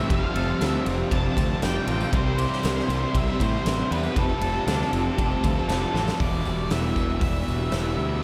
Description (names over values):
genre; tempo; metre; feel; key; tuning
rock, shoegaze and dream pop; 118 BPM; 4/4; straight; unclear; A4 = 438 Hz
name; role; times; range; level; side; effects
octave-fuzz lead guitar; melody; 0.0-8.2 s; A4 to A5; -33 LUFS; equal; distortion, analog delay
string machine, cellos; sustained chords; 0.0-8.2 s; G4 to D6; -37 LUFS; equal; ensemble chorus
twangy electric guitar; arpeggios; 0.0-6.2 s; G3 to A4; -40 LUFS; equal; none
distorted electric guitar; riff; 0.0-8.2 s; E2 to C4; -36 LUFS; equal; none
fuzz guitar; riff; 0.0-8.2 s; E2 to C4; -32 LUFS; equal; distortion, ensemble chorus
overdriven semi-hollow guitar; riff; 0.0-8.2 s; E2 to F4; -35 LUFS; equal; reverse reverb
growling fingered electric bass; bass; 0.1-8.2 s; E1 to A2; -30 LUFS; equal; overdrive
huge arena drum kit; drums; 0.1-7.8 s; hi-hat, kick drum, ride cymbal, snare drum; -30 LUFS; equal; none
tambourine; percussion; 0.1-7.8 s; none; -50 LUFS; equal; none
room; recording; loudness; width
wet lush hall reverb, RT60 2.1 s; dreamy mix soaked in reverb; -24 LUFS; mono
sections
0.0-6.2 A section; 6.2-8.2 B section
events
drum fill 5.9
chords
0.1 F69; 2.1 Cmaj7; 4.2 F69; 6.2 Em7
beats
| 0.10 0.61 1.12 1.62 | 2.13 2.64 3.15 3.65 | 4.16 4.67 5.18 5.69 | 6.20 6.70 7.21 7.72 | 8.23